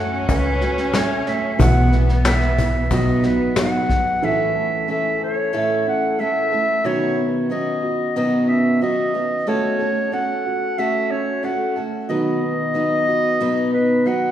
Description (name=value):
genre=acoustic folk duo or small band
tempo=91 BPM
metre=4/4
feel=straight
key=unclear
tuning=A4 = 439 Hz
part: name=warm clarinet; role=melody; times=0.0-14.3 s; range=B4 to F#5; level=-22 LUFS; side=equal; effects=none
part: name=warm cello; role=second line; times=0.0-3.9 s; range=B3 to C#4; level=-27 LUFS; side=right 2 dB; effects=none
part: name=picked steel-string acoustic guitar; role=accompaniment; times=0.0-14.3 s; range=A2 to B4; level=-23 LUFS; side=equal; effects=none
part: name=dark upright piano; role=arpeggios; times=0.0-14.3 s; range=D#3 to A4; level=-25 LUFS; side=right 3 dB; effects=none
part: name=upright bass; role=bass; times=0.0-3.2 s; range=B1 to F#2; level=-20 LUFS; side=equal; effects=none
part: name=cajon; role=percussion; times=0.1-4.1 s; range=none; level=-24 LUFS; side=left 2 dB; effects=none
part: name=vintage brush drum kit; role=drums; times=0.3-4.0 s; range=kick drum, snare drum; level=-24 LUFS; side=equal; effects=none
room=wet concert hall reverb, RT60 2.4 s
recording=recorded in a church or concert hall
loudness=-17 LUFS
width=side -10 dB against mid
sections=0.0-4.2 A section; 4.2-14.3 B section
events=none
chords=0.0 F#m; 1.6 Bsus4; 2.9 B; 4.2 A; 6.8 Badd9; 9.5 F#m/A; 12.1 B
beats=0.29 0.94 | 1.60 2.25 2.91 3.57 | 4.22 4.88 5.54 6.19 | 6.85 7.51 8.16 8.82 | 9.47 10.13 10.79 11.44 | 12.10 12.76 13.41 14.07